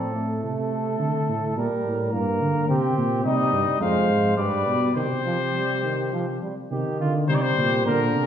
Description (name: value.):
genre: classical, imitative canzona for brass ensemble.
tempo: 105 BPM.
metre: 3/4.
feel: straight.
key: C minor from 3.2 s.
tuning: A4 = 441 Hz.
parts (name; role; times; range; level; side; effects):
warm flugelhorn; second line; 0.0-8.3 s; Eb4 to C5; -29 LUFS; right 1 dB; none.
warm trombone; accompaniment; 0.0-8.3 s; D3 to C4; -26 LUFS; right 2 dB; none.
warm tuba; bass; 0.0-8.3 s; F2 to D3; -26 LUFS; right 1 dB; none.
warm trumpet; melody; 3.2-8.3 s; Bb4 to F5; -25 LUFS; left 6 dB; none.
room: wet recital hall reverb, RT60 1.3 s.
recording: recorded in a church or concert hall.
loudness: -21 LUFS.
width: side -9 dB against mid.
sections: 0.0-6.7 A section; 6.7-8.3 B section.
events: none.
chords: 0.0 Am; 1.0 D5; 1.6 Gm; 2.7 C5; 3.2 Cm; 3.8 Fm; 4.4 G; 5.0 Cm.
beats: 0.43 1.00 | 1.57 2.13 2.69 | 3.25 3.81 4.38 | 4.96 5.54 6.13 | 6.71 7.29 7.86.